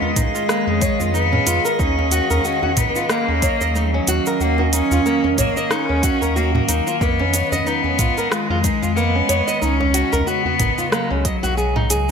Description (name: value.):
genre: organic downtempo.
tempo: 92 BPM.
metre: 4/4.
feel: swing 56% on 16ths.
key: Eb minor.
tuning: A4 = 440 Hz.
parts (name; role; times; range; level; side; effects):
clear cello; melody; 0.0-11.9 s; Gb3 to Db4; -21 LUFS; left 2 dB; digital delay.
warbly tape-like pad; sustained chords; 0.0-12.1 s; Db3 to F5; -25 LUFS; right 1 dB; chorus, built-in reverb, sidechain pumping.
flamenco guitar; arpeggios; 0.0-12.1 s; Bb3 to Eb5; -23 LUFS; equal; vintage 12-bit sampler grit, digital delay.
djembe; percussion; 0.0-12.1 s; none; -30 LUFS; right 2 dB; none.
drifting glass-harmonics texture; texture; 0.0-12.1 s; Eb5; -32 LUFS; right 6 dB; chorus, built-in reverb.
warm sub bass; bass; 0.2-12.1 s; Ab1 to F2; -21 LUFS; equal; sidechain pumping.
electronic kick drum; drums; 0.2-11.4 s; none; -23 LUFS; equal; none.
organic electronic drum kit; drums; 0.2-12.1 s; hi-hat, rim click, shaker, toms; -23 LUFS; right 1 dB; gated reverb.
room: light reverb, digital ambience.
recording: bright 1980s-style digital production.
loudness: -16 LUFS.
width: side -6 dB against mid.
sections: 0.0-12.1 A section.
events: kick drops out 11.6-12.1.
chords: 0.0 Fm7b5; 1.8 Ebm9; 7.0 Fm7b5; 9.6 Db7sus4.